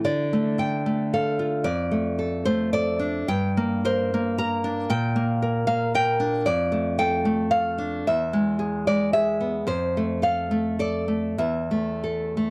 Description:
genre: romantic piece for solo classical guitar.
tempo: 92-118 BPM.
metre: 3/4.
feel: rubato.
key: D minor.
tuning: A4 = 439 Hz.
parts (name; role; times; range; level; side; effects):
nylon-string guitar; solo; 0.0-12.5 s; E2 to Bb5; -24 LUFS; equal; none.
room: light reverb.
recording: cassette tape, lossy compression artefacts.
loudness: -24 LUFS.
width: mono.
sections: 0.0-12.5 A section.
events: none.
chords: 0.0 Dm; 1.7 Dm/F; 3.3 Gm; 4.9 Gm/Bb; 6.5 Dm/F; 8.1 E; 9.7 F; 11.4 Esus4.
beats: | 0.03 0.59 1.14 | 1.67 2.21 2.74 | 3.28 3.82 4.36 | 4.89 5.42 5.96 | 6.48 6.99 7.53 | 8.07 8.60 9.13 | 9.66 10.20 10.77 | 11.39 12.05.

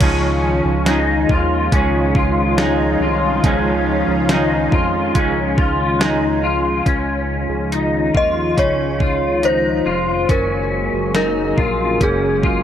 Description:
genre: dream pop.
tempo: 70 BPM.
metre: 4/4.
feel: straight.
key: Db major.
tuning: A4 = 441 Hz.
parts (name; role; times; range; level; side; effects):
semi-hollow electric guitar; accompaniment; 0.0-7.4 s; Db3 to Ab4; -23 LUFS; right 4 dB; tremolo, wide subtle chorus.
lush unison pad; sustained chords; 0.0-12.6 s; Db3 to Ab4; -21 LUFS; equal; chorus.
electric guitar through a small old amp; arpeggios; 0.0-12.6 s; Db4 to F4; -20 LUFS; left 3 dB; ensemble chorus, tape echo.
chorused synth bass; bass; 0.0-12.6 s; F1 to F2; -23 LUFS; equal; none.
detuned 8-bit digital drum machine; drums; 0.0-12.6 s; crash cymbal, hi-hat, kick drum, snare drum; -19 LUFS; equal; none.
synth chime; melody; 8.2-12.6 s; Ab4 to Eb5; -20 LUFS; equal; ensemble chorus, tape echo.
room: moderate huge ambient reverb, RT60 4.7 s.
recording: none.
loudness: -15 LUFS.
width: side -10 dB against mid.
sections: 0.0-6.9 A section; 6.9-12.6 B section.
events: none.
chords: 0.0 Dbadd9; 10.3 Gbadd9.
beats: | 0.01 0.86 1.72 2.58 | 3.44 4.29 5.15 6.01 | 6.86 7.72 8.58 9.44 | 10.29 11.15 12.01.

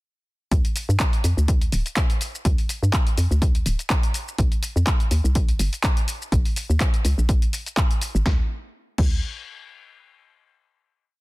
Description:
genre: deep house.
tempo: 124 BPM.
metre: 4/4.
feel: swing 55% on 16ths.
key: D phrygian.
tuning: A4 = 439 Hz.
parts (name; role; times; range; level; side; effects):
hollow knocking FM bass; bass; 0.5-9.2 s; D1 to G2; -21 LUFS; equal; sidechain pumping.
electronic kick drum; drums; 0.5-9.1 s; none; -21 LUFS; equal; none.
punchy analog drum machine; drums; 0.5-9.1 s; crash cymbal, handclaps, hi-hat, shaker, snare drum; -28 LUFS; equal; none.
room: little or no reverb.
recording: dense, heavily limited modern master.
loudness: -20 LUFS.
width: side -21 dB against mid.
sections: 0.5-8.3 drop; 8.3-10.2 final chord.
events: drop 0.5-8.3.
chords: none.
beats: | 0.52 1.00 1.48 1.97 | 2.45 2.93 3.42 3.90 | 4.39 4.87 5.35 5.84 | 6.32 6.80 7.29 7.77 | 8.26 8.74.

